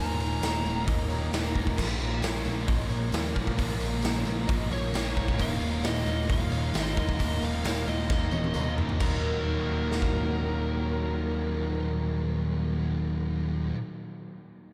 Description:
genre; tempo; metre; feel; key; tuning
rock, shoegaze and dream pop; 133 BPM; 4/4; straight; Eb minor; A4 = 440 Hz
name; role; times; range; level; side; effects
fuzz lead guitar; melody; 0.0-0.8, 4.7-13.4 s; Bb4 to Bb5; -39 LUFS; equal; distortion, delay
phased analog pad; sustained chords; 0.0-13.4 s; Db3 to Bb4; -41 LUFS; equal; phaser, chorus
direct-recorded clean electric guitar; arpeggios; 0.0-9.7 s; Eb4 to Eb5; -45 LUFS; equal; ensemble chorus, delay
crunchy overdriven guitar; riff; 0.0-13.8 s; Eb2 to F4; -37 LUFS; equal; reverse reverb
thick fuzz guitar; riff; 0.0-13.8 s; Eb2 to Bb3; -37 LUFS; equal; distortion, ensemble chorus
overdriven picked electric bass; bass; 0.0-13.7 s; Eb1 to Bb2; -34 LUFS; equal; none
tambourine; percussion; 0.2-9.2 s; none; -51 LUFS; equal; none
raw garage drum kit; drums; 0.4-10.1 s; crash cymbal, hi-hat, kick drum, snare drum, toms; -32 LUFS; equal; none
room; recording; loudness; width
moderate cathedral reverb, RT60 5.7 s; dreamy mix soaked in reverb; -28 LUFS; mono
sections
0.0-9.0 A section; 9.0-12.6 B section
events
drum fill 8.1-9.0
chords
0.0 Ebsus2; 1.8 Bbm; 5.4 Ebsus2; 9.0 Ebm

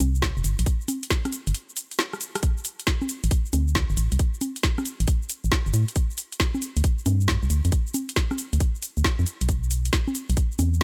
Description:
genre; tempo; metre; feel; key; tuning
UK garage, two-step garage; 136 BPM; 4/4; swing 67% on 16ths; unclear; A4 = 440 Hz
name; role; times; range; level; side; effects
organ-like FM bass; bass; 0.0-10.8 s; F1 to A2; -24 LUFS; equal; none
garage drum kit; drums; 0.0-10.8 s; congas, hi-hat, rim click, shaker, snare drum; -29 LUFS; equal; none
electronic kick drum; drums; 0.2-10.8 s; none; -26 LUFS; equal; none
room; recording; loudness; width
little or no reverb; none; -25 LUFS; mono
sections
0.0-10.8 A section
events
break 1.5-2.4; drum fill 2.0-2.4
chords
none

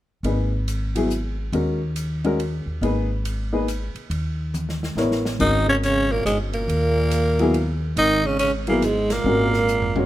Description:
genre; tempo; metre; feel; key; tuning
modal jazz; 140 BPM; 3/4; swing 65% on 8ths; G# minor; A4 = 440 Hz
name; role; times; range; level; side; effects
warm upright piano; accompaniment; 0.2-10.1 s; F#3 to C#5; -24 LUFS; left 2 dB; none
upright bass; bass; 0.2-10.1 s; G1 to D#2; -24 LUFS; equal; none
open jazz drum kit; drums; 0.2-10.1 s; crash cymbal, hi-hat, kick drum, ride cymbal, snare drum, toms; -34 LUFS; right 2 dB; none
growling tenor saxophone; melody; 5.4-10.1 s; G#3 to D#4; -21 LUFS; equal; none
breathy trombone; second line; 5.4-10.1 s; G#2 to D#3; -27 LUFS; right 4 dB; none
room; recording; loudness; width
light reverb; none; -19 LUFS; side -14 dB against mid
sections
0.2-5.4 A section; 5.4-10.1 B section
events
drum fill 4.5-5.4, 9.7-10.1; band accent 9.0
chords
0.2 G#sus4; 5.4 G#9sus4

